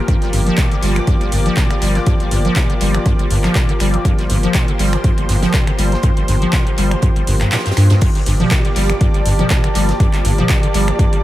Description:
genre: acid house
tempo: 121 BPM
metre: 4/4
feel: swing 55% on 16ths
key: G minor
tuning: A4 = 443 Hz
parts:
  - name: lush unison pad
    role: sustained chords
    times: 0.0-11.2 s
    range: F3 to D5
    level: -22 LUFS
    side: left 1 dB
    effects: chorus, sidechain pumping
  - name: acid bass, square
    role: riff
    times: 0.1-11.2 s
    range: G1 to G3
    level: -19 LUFS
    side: equal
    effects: tube saturation, ensemble chorus, vintage 12-bit sampler grit, tape echo
  - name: damped 70s drum kit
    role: drums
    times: 0.1-11.1 s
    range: hi-hat, snare drum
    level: -32 LUFS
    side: right 2 dB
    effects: none
  - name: electronic kick drum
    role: drums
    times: 0.1-11.1 s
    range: none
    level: -16 LUFS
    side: equal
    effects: overdrive
  - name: punchy analog drum machine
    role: drums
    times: 0.1-11.2 s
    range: crash cymbal, finger snaps, handclaps, hi-hat, toms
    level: -23 LUFS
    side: equal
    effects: overdrive, analog delay
  - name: saturated sub bass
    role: bass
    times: 0.3-10.9 s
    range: G1 to G2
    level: -16 LUFS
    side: equal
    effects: sidechain pumping
  - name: warbly tape-like pad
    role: texture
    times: 8.4-11.2 s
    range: G4 to A5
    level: -25 LUFS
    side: right 2 dB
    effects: chorus, built-in reverb, sidechain pumping
room: light reverb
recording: echo-heavy mix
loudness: -13 LUFS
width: side -15 dB against mid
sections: 0.0-8.0 A section; 8.0-11.2 B section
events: kick drops out 7.5-8.0; drop 8.0-11.2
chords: 0.0 Gm7

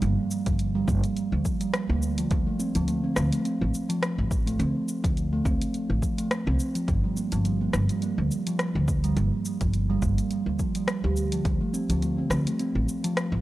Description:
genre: organic downtempo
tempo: 105 BPM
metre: 4/4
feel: swing 55% on 16ths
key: G minor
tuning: A4 = 438 Hz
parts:
  - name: steel tongue drum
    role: arpeggios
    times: 0.0-13.2 s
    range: F3 to G4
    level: -27 LUFS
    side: right 1 dB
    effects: tape echo
  - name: upright bass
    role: bass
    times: 0.0-13.4 s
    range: G1 to D2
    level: -27 LUFS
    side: equal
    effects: tube saturation, sidechain pumping
  - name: deep house drum kit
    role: drums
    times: 0.0-13.3 s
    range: hi-hat, rim click, shaker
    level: -32 LUFS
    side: left 1 dB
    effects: overdrive, small room reverb
  - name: electronic kick drum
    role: drums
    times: 0.5-11.6 s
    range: none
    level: -28 LUFS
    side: equal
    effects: overdrive, small room reverb
room: small room ambience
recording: dry, gritty hardware recording, cassette tape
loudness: -24 LUFS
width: side -16 dB against mid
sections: 0.0-13.4 A section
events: none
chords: 0.0 Gm7; 2.3 Dm7; 6.9 Gm7; 11.5 Dm7

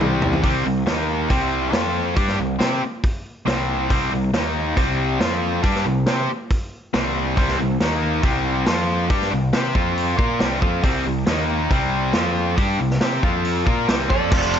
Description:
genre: classic rock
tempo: 138 BPM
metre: 4/4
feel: straight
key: unclear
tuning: A4 = 440 Hz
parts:
  - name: sludgy distorted guitar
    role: riff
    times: 0.0-14.6 s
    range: F2 to C5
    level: -21 LUFS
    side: left 1 dB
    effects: overdrive
  - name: growling picked electric bass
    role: bass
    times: 0.0-14.6 s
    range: F1 to C3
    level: -25 LUFS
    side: equal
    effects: overdrive
  - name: vintage drum kit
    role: drums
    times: 0.0-14.6 s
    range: crash cymbal, hi-hat, kick drum, ride cymbal, snare drum, toms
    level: -22 LUFS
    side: equal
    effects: none
  - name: electric slide guitar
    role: melody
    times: 14.1-14.6 s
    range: D5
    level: -23 LUFS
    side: right 5 dB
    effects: none
  - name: octave-fuzz lead guitar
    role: second line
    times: 14.1-14.6 s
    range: A4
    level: -27 LUFS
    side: right 5 dB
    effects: distortion
room: light reverb, small room ambience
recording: nothing above 7.7 kHz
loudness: -18 LUFS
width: side -8 dB against mid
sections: 0.4-14.3 A section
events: drum fill 0.0-0.4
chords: 0.4 C5; 0.9 Eb5; 1.3 C5; 1.7 F5; 2.2 C5; 4.3 Eb5; 4.8 C5; 5.2 F5; 5.6 C5; 7.8 Eb5; 8.2 C5; 8.7 F5; 9.1 C5; 9.8 F5; 10.2 C5; 11.3 Eb5; 11.7 C5; 12.2 F5; 12.6 C5; 13.2 F5; 13.7 C5

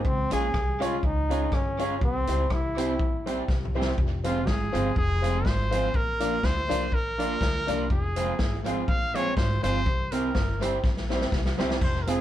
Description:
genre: ska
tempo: 122 BPM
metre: 4/4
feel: swing 54% on 8ths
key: F minor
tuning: A4 = 437 Hz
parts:
  - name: bright trombone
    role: melody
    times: 0.0-3.5 s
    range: C4 to Ab4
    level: -29 LUFS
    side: left 1 dB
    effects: none
  - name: vintage drum kit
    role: drums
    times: 0.0-12.2 s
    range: hi-hat, kick drum, rim click, snare drum, splash cymbal, toms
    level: -28 LUFS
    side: equal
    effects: tape echo
  - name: upright bass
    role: bass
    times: 0.1-12.2 s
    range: F1 to D2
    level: -30 LUFS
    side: equal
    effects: none
  - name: electric guitar at the edge of break-up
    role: accompaniment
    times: 0.3-12.2 s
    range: F3 to Ab4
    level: -33 LUFS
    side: right 4 dB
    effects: spring reverb
  - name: warm upright piano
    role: stabs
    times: 0.3-12.2 s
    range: C4 to D5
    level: -32 LUFS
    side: left 1 dB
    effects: none
  - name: bright trumpet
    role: melody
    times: 4.3-12.2 s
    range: F4 to F5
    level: -29 LUFS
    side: equal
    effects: none
room: light reverb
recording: band playing live in one room, tape saturation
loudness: -24 LUFS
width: side -12 dB against mid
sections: 0.0-4.0 A section; 4.0-12.2 B section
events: drum fill 3.5-4.0, 10.8-11.8; trumpet solo 4.0-12.2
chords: 0.0 Db; 2.0 C; 4.0 Fm; 5.9 Bb; 7.9 Fm; 9.9 C

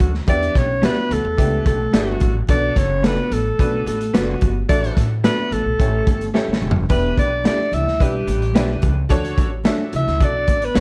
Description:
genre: uptempo 1960s-style soul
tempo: 109 BPM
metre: 4/4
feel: straight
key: D major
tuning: A4 = 438 Hz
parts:
  - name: warm alto saxophone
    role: melody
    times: 0.0-10.8 s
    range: F#4 to E5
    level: -24 LUFS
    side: equal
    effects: slapback echo
  - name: vibraphone with medium mallets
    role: second line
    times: 0.0-10.8 s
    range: F#3 to E4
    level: -32 LUFS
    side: equal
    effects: none
  - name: bright upright piano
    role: accompaniment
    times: 0.0-10.8 s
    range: D3 to E5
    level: -30 LUFS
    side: equal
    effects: none
  - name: upright bass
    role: bass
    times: 0.0-10.8 s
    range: E1 to A2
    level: -25 LUFS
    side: equal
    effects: tube saturation
  - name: crunchy breakbeat drum kit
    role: drums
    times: 0.0-10.8 s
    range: hi-hat, kick drum, snare drum, toms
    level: -22 LUFS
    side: equal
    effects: none
  - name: congas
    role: percussion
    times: 0.3-10.8 s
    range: none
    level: -35 LUFS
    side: equal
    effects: none
  - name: electric guitar through a small old amp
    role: stabs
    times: 0.8-10.8 s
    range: A3 to D5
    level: -30 LUFS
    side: equal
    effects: none
room: light reverb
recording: dark, warm production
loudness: -19 LUFS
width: mono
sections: 0.0-10.8 A section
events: drum fill 6.3-6.9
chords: 0.3 Em7; 2.5 Bm7; 4.7 D/A; 5.8 A7; 6.9 Em7; 9.1 Dmaj7

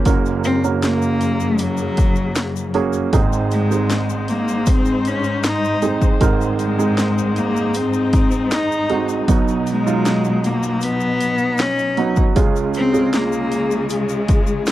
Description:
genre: pop ballad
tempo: 78 BPM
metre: 4/4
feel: straight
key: unclear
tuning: A4 = 440 Hz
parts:
  - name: felt-muted upright piano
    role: accompaniment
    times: 0.0-14.7 s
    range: Gb1 to Bb4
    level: -21 LUFS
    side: right 4 dB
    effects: none
  - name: warm studio string section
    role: sustained chords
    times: 0.0-14.7 s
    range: Gb2 to C5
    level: -25 LUFS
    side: left 4 dB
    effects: none
  - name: house drum kit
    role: drums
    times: 0.1-14.7 s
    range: hi-hat, kick drum, snare drum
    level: -18 LUFS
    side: equal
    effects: none
  - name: tube shaker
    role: percussion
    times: 0.1-14.7 s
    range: none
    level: -37 LUFS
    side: left 15 dB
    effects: none
  - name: rich cello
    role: melody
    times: 0.4-14.7 s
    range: Gb3 to Eb4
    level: -20 LUFS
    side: left 2 dB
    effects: none
room: little or no reverb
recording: dry, close 1970s-style studio recording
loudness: -16 LUFS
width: side -14 dB against mid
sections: 0.0-14.7 A section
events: none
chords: 0.1 Gb; 3.1 Ab; 9.3 Cb; 12.4 Db

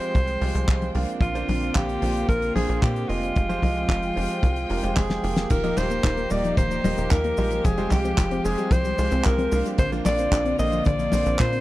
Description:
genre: italo disco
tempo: 112 BPM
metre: 4/4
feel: straight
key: F dorian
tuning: A4 = 440 Hz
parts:
  - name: bright alto saxophone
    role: melody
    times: 0.0-11.6 s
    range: F4 to Eb5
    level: -27 LUFS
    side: equal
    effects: tape echo
  - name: clear studio string section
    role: sustained chords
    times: 0.0-11.6 s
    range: D3 to G5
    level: -30 LUFS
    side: left 1 dB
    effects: none
  - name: bright concert grand piano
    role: stabs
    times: 0.0-11.6 s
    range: Ab3 to G5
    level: -31 LUFS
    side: right 5 dB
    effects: none
  - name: damped 70s drum kit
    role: drums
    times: 0.0-11.6 s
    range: cabasa, crash cymbal, handclaps, hi-hat, snare drum, toms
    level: -30 LUFS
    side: left 1 dB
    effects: small room reverb
  - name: tight sequencer bass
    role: bass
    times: 0.1-11.6 s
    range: Eb1 to Bb2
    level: -27 LUFS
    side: equal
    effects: none
  - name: kick drum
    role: drums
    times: 0.1-11.5 s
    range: none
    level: -22 LUFS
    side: equal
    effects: small room reverb
  - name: soft round pluck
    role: arpeggios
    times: 5.5-11.6 s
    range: D3 to F4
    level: -30 LUFS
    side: left 3 dB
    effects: chorus, tape echo
room: studio reverb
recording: dry, close 1970s-style studio recording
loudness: -20 LUFS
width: side -16 dB against mid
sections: 0.0-5.5 A section; 5.5-11.6 B section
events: drum fill 5.0-5.5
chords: 0.0 Fmadd9; 5.5 Ebadd9; 7.6 Fmadd9

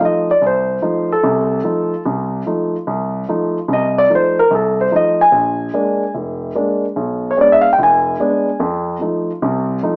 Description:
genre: solo jazz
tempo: 147 BPM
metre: 4/4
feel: swing 67% on 8ths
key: F mixolydian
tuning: A4 = 436 Hz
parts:
  - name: dark concert grand piano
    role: solo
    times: 0.0-10.0 s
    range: F1 to Ab5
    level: -13 LUFS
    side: equal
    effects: none
room: moderate studio reverb, RT60 0.8 s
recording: small speaker sound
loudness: -13 LUFS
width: side -31 dB against mid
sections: 0.0-10.0 A section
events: grand piano solo 0.0-10.0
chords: 0.0 F7; 5.3 Bb7; 7.0 Bdim7; 8.6 F7

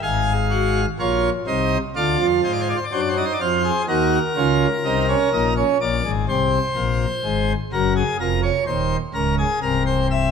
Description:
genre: classical, baroque-style 3-part fugue for pipe organ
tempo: 62 BPM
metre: 4/4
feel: straight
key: unclear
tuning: A4 = 444 Hz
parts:
  - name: pipe organ, plenum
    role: solo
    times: 0.0-10.3 s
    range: C1 to F5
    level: -18 LUFS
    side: equal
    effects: none
room: wet scoring stage reverb, RT60 2.0 s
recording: none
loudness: -18 LUFS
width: side -6 dB against mid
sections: 0.0-10.3 A section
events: none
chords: 0.0 Fm/Ab; 2.0 Dm7b5; 3.9 D#m; 5.8 A#7; 7.7 D#m; 9.6 C7

